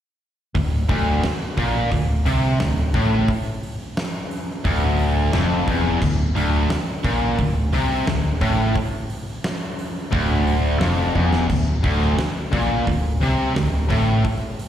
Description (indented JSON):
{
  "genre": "hard rock",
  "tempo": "88 BPM",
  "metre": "4/4",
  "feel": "straight",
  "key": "D minor",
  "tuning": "A4 = 441 Hz",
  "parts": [
    { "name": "distorted electric guitar", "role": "riff", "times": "0.6-14.2 s", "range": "D2 to C3", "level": "-26 LUFS", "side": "left 8 dB", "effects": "overdrive, slapback echo" },
    { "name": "distorted electric guitar", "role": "riff", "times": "0.6-14.2 s", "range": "D2 to C3", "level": "-24 LUFS", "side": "equal", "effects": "overdrive, slapback echo" },
    { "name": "heavy high-gain guitar", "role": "riff", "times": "0.6-14.2 s", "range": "D2 to C3", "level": "-26 LUFS", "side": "right 7 dB", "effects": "distortion, slapback echo" },
    { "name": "hollow-body short-scale fingered electric bass", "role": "bass", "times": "0.6-14.2 s", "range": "D1 to C2", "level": "-22 LUFS", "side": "equal", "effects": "none" },
    { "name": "huge arena drum kit", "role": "drums", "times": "0.6-14.7 s", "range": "crash cymbal, hi-hat, kick drum, snare drum", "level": "-25 LUFS", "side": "equal", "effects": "none" }
  ],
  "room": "light reverb",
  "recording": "live gig heard through the venue's PA, recital hall reverb",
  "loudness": "-18 LUFS",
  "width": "side -10 dB against mid",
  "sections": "0.6-14.7 A section",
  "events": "drum fill 11.2-11.5",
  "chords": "0.6 Dm"
}